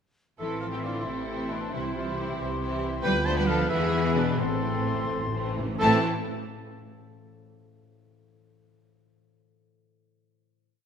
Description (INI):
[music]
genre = classical, dramatic, fast romantic movement for symphony orchestra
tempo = 84-92 BPM (dotted quarters)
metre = 6/8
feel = straight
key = A minor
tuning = A4 = 440 Hz
[part]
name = warm symphonic violin section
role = melody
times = 0.4-6.1 s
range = C4 to A5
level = -32 LUFS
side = left 2 dB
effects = none
[part]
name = silver concert flute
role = second line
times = 0.4-6.1 s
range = A5 to C6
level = -35 LUFS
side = left 2 dB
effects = none
[part]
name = warm clarinet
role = second line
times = 0.4-6.0 s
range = E4 to B4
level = -38 LUFS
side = left 1 dB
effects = none
[part]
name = warm cor anglais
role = second line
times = 0.4-6.0 s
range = A4 to A5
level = -34 LUFS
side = right 2 dB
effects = none
[part]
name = mellow French horn section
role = sustained chords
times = 0.4-6.0 s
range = B3 to A4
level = -35 LUFS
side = equal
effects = none
[part]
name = concert harp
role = arpeggios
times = 0.4-6.1 s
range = A2 to A5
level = -36 LUFS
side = left 10 dB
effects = none
[part]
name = rich symphonic cello section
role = bass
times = 0.4-6.1 s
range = A2 to A3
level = -32 LUFS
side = right 3 dB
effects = none
[part]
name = rich symphonic double bass section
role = bass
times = 0.4-6.1 s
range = A1 to E2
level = -34 LUFS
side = right 4 dB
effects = none
[part]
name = rich symphonic violin section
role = second line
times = 0.6-6.1 s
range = A3 to E4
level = -36 LUFS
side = left 2 dB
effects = none
[part]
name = rich symphonic viola section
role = accompaniment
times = 0.6-6.1 s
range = E3 to B3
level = -35 LUFS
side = right 2 dB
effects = none
[part]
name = timpani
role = percussion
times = 4.4-6.0 s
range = A2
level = -36 LUFS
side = equal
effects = none
[sound]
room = moderate scoring stage reverb, RT60 1.9 s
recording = none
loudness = -25 LUFS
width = side -7 dB against mid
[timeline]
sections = 0.4-5.8 A section; 5.8-7.2 final chord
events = timpani fill 4.4-5.8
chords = 0.4 Am; 1.7 C; 3.0 Bdim/D; 3.7 E; 4.4 Am